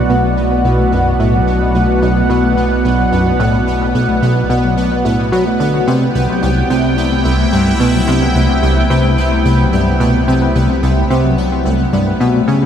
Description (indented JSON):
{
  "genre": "ambient, sequencer-driven space music",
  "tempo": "109 BPM",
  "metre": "4/4",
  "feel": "straight",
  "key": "unclear",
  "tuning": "A4 = 440 Hz",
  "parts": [
    { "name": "sweeping resonant pad", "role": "sustained chords", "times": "0.0-12.7 s", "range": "B2 to G5", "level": "-17 LUFS", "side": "right 1 dB", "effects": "chorus, shimmer reverb" },
    { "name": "Celtic harp", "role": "arpeggios", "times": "0.0-12.7 s", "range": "B2 to B4", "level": "-19 LUFS", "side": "left 4 dB", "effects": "auto-pan, low-pass filter, ping-pong delay" },
    { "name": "plucky analog bass", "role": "riff", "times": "0.0-12.7 s", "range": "B1 to F#3", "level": "-15 LUFS", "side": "equal", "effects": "lush chorus, ping-pong delay" },
    { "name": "warm sub bass", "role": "bass", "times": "0.0-12.7 s", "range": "B1 to C#2", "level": "-19 LUFS", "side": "equal", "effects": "none" },
    { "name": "pulsing gated texture", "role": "texture", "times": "0.0-12.7 s", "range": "B3 to B4", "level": "-25 LUFS", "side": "right 3 dB", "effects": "chorus, built-in reverb, shimmer reverb" }
  ],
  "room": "wet huge ambient reverb, RT60 7.9 s",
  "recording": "none",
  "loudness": "-11 LUFS",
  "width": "side -8 dB against mid",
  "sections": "0.0-12.7 A section",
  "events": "filter sweep on harp 0.0-12.7",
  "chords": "0.0 Bm; 5.9 C",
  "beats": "0.37 0.92 | 1.47 2.02 2.57 3.12 | 3.67 4.22 4.77 5.32 | 5.87 6.42 6.97 7.53 | 8.08 8.63 9.18 9.73 | 10.28 10.83 11.38 11.93 | 12.48"
}